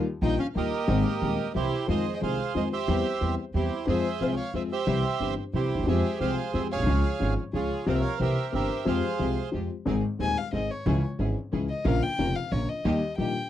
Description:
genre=tango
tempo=181 BPM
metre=3/4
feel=rubato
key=F harmonic minor, Ab major from 9.9 s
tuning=A4 = 440 Hz
part: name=dark upright piano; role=accompaniment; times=0.0-13.3 s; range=Eb1 to Ab4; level=-28 LUFS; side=left 4 dB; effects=none
part: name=bright symphonic string section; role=stabs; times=0.0-13.3 s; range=G3 to Bb4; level=-38 LUFS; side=right 5 dB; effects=none
part: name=upright bass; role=bass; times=0.0-13.3 s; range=F1 to F2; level=-30 LUFS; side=right 2 dB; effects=none
part: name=bandoneon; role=melody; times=0.2-9.5 s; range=E4 to G5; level=-31 LUFS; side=right 7 dB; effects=slapback echo
part: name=warm violin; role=second line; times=0.2-13.5 s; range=Bb3 to Ab5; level=-34 LUFS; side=left 4 dB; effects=none
room=light reverb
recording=dry, close 1970s-style studio recording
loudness=-25 LUFS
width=side -11 dB against mid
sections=0.0-1.9 A section; 1.9-9.9 B section; 9.9-13.5 A section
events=violin solo 9.9-13.5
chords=0.0 Ebadd9; 0.9 Ab; 1.6 C7; 1.9 Fm7; 2.9 C/E; 3.9 Fm; 4.9 C; 5.9 Fmadd9; 6.9 Db; 7.9 C7sus4; 8.2 C7; 8.9 Fmadd9; 9.9 Ab; 10.9 Dbm; 11.9 Bbm; 12.8 Eb

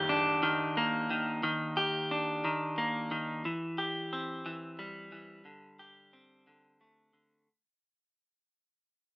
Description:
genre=rock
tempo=60 BPM (dotted quarters)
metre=6/8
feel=straight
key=unclear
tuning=A4 = 441 Hz
part: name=clean electric guitar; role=arpeggios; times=0.0-7.5 s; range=D3 to G4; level=-30 LUFS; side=equal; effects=none
room=wet studio ambience, RT60 0.5 s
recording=band playing live in one room, small speaker sound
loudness=-30 LUFS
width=side -36 dB against mid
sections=0.0-7.5 A section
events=fade-out 0.0-7.5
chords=0.0 Ebmaj7; 3.4 C/E; 5.5 D7sus4

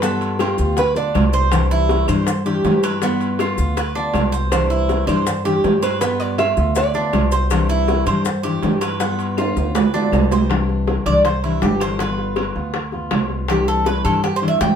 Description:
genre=latin, Cuban son and guajira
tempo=160 BPM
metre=4/4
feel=straight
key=C major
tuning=A4 = 440 Hz
part: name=nylon-string guitar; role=melody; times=0.0-1.3, 4.5-7.3 s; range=G4 to E5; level=-22 LUFS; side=right 3 dB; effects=none
part: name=fingerpicked steel-string acoustic guitar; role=accompaniment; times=0.0-14.8 s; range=C3 to F4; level=-23 LUFS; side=left 5 dB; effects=none
part: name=Cuban tres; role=arpeggios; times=0.0-14.8 s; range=B3 to G5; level=-22 LUFS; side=right 2 dB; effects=none
part: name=upright bass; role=bass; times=0.0-14.8 s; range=G1 to G2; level=-21 LUFS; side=equal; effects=none
part: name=bongos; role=percussion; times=0.0-14.8 s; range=none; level=-25 LUFS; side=left 4 dB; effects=none
part: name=maracas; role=percussion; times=0.0-10.5 s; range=none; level=-37 LUFS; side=left 6 dB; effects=none
part: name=timbales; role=percussion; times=0.2-14.8 s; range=none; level=-24 LUFS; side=right 5 dB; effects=none
part: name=claves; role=percussion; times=0.4-14.2 s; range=none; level=-37 LUFS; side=left 7 dB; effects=none
room=moderate studio reverb, RT60 0.6 s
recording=band playing live in one room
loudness=-16 LUFS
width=side -8 dB against mid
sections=0.0-10.5 A section; 10.5-14.8 B section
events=drum fill 9.4-10.5; Cuban tres solo 10.5-14.8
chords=0.0 G7; 1.5 Cadd9; 3.0 G7; 4.5 Cadd9; 6.0 G7; 7.5 Cadd9; 9.0 G7; 10.5 Cadd9; 12.0 G7; 13.5 Cadd9

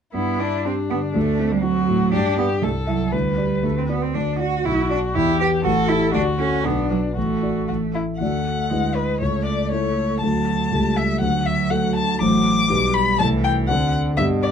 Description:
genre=quick classical-period movement for piano trio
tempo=120 BPM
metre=2/4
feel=straight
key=G major, D major from 4.1 s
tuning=A4 = 440 Hz
part: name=rich violin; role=melody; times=0.1-14.5 s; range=D4 to D6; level=-24 LUFS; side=left 5 dB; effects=none
part: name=rich cello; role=second line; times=0.1-14.5 s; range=B2 to G4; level=-24 LUFS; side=right 6 dB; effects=none
part: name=dark concert grand piano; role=accompaniment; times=0.1-14.5 s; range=A1 to E5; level=-21 LUFS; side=left 1 dB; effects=none
room=moderate studio reverb, RT60 0.8 s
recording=dark, warm production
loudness=-18 LUFS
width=side -7 dB against mid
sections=0.1-8.2 A section; 8.2-14.5 B section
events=none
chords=0.1 G5; 1.2 D7; 2.1 G5; 2.6 Am/C; 3.1 G/D; 3.6 D; 4.7 Bm; 5.2 Em; 5.6 A5; 6.1 D; 6.6 Bm; 7.2 D/A; 7.7 A5; 8.2 D; 8.7 E7/D; 9.2 A/C#; 10.2 D; 10.7 A7/C#; 11.2 D; 12.2 D7/A; 12.7 G/B; 13.2 Am/C; 13.7 D7

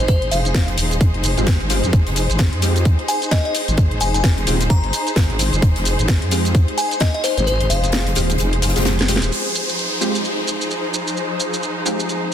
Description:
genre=bass house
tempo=130 BPM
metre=4/4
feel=swing 59% on 16ths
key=F minor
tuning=A4 = 441 Hz
part: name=glassy synth bell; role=melody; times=0.0-8.1 s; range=C5 to Bb5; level=-23 LUFS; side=left 2 dB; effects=chorus, digital delay
part: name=wobble bass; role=bass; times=0.0-9.3 s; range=Eb1 to F2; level=-20 LUFS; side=equal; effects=chorus, sidechain pumping
part: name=garage drum kit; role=drums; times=0.0-12.2 s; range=hi-hat, shaker, snare drum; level=-24 LUFS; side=equal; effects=none
part: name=rich studio string section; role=texture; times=0.0-12.3 s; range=F3 to C5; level=-24 LUFS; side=equal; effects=sidechain pumping
part: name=electronic kick drum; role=drums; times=0.1-7.1 s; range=none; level=-16 LUFS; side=equal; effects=none
part: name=swinging big-band drum kit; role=drums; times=0.1-9.2 s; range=hi-hat, snare drum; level=-31 LUFS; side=left 3 dB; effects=sidechain pumping on hats, high-pass filter on hats, high-pass filter on snare, high-pass filter on room
part: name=orchestra-hit-like synth stab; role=stabs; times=1.4-12.0 s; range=Ab3 to G4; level=-25 LUFS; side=right 1 dB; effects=built-in reverb, vintage 12-bit sampler grit, sidechain pumping, digital delay
part: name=downlifter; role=sound effects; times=9.3-12.3 s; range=none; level=-25 LUFS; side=equal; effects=none
room=light reverb, small room ambience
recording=dense, heavily limited modern master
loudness=-16 LUFS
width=side -10 dB against mid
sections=0.0-9.3 A section; 9.3-12.3 B section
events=kick drops out 7.5-9.3; drum fill 8.9-9.3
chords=0.0 Fmadd9

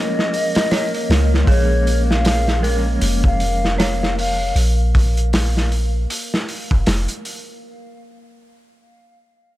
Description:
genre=trip hop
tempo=78 BPM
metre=4/4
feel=swing 59% on 16ths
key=Bb minor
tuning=A4 = 440 Hz
part: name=mellow hollow silver concert flute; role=melody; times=0.0-4.6 s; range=Db5 to F5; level=-25 LUFS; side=left 2 dB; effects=tape echo
part: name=mellow electric guitar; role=accompaniment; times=0.0-4.5 s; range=F3 to Db4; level=-26 LUFS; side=equal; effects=tremolo, tape echo
part: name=warbly tape-like pad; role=sustained chords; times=0.0-7.6 s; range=Bb3 to Bb4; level=-29 LUFS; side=right 2 dB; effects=chorus, built-in reverb
part: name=dark detuned synth bell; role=arpeggios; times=0.0-4.6 s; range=Ab4 to Db5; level=-30 LUFS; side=right 2 dB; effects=chorus, tremolo, tape echo
part: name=crunchy breakbeat drum kit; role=drums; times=0.2-7.5 s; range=hi-hat, kick drum, snare drum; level=-20 LUFS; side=equal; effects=none
part: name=soft 808-style bass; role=bass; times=1.1-7.1 s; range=F1 to Db2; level=-18 LUFS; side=equal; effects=tube saturation
room=studio reverb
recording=none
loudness=-15 LUFS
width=side -16 dB against mid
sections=0.0-7.6 A section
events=none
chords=0.0 Bbm7

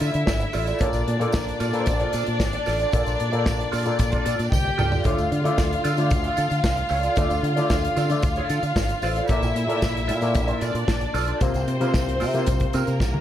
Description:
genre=disco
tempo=113 BPM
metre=4/4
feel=straight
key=unclear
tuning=A4 = 440 Hz
part: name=warm symphonic violin section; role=second line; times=0.0-13.2 s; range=Bb3 to G5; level=-26 LUFS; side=left 1 dB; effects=none
part: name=electric guitar through a small old amp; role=accompaniment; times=0.0-13.2 s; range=C4 to D5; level=-30 LUFS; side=right 6 dB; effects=wah, phaser
part: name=mellow clav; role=accompaniment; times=0.0-13.2 s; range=Bb2 to F5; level=-28 LUFS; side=left 4 dB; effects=auto-wah
part: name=fingered electric bass with an envelope filter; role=bass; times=0.0-13.2 s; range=G#1 to D3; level=-26 LUFS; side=equal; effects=none
part: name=modern studio drum kit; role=drums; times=0.0-13.2 s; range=hi-hat, kick drum, snare drum, toms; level=-25 LUFS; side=equal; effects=none
part: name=tambourine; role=percussion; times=0.0-13.1 s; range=none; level=-42 LUFS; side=right 7 dB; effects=none
room=light reverb, small room ambience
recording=none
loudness=-20 LUFS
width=side -11 dB against mid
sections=0.0-13.2 A section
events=drum fill 4.5-5.0, 13.0; clav fill 8.5-9.3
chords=0.0 Dm; 0.8 Bbmaj7; 5.0 Dm; 9.3 Bbmaj7; 11.4 C7sus4

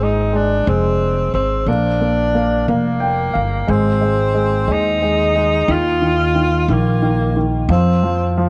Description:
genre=six-eight pop ballad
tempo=60 BPM (dotted quarters)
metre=6/8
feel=straight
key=unclear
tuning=A4 = 442 Hz
part: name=mellow tenor saxophone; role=melody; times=0.0-8.3 s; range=Bb3 to F4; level=-21 LUFS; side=equal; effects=tape echo
part: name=warm grand piano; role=accompaniment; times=0.0-8.5 s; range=Eb3 to G5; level=-22 LUFS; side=equal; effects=none
part: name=upright bass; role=bass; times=0.0-8.5 s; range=F1 to F2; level=-21 LUFS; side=equal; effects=none
room=light reverb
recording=none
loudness=-17 LUFS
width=mono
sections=0.0-3.7 A section; 3.7-8.5 B section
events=grand piano fill 2.7-3.7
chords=0.0 Ab6; 1.7 Bb; 3.7 Ab; 5.7 Ebsus2; 7.7 F5

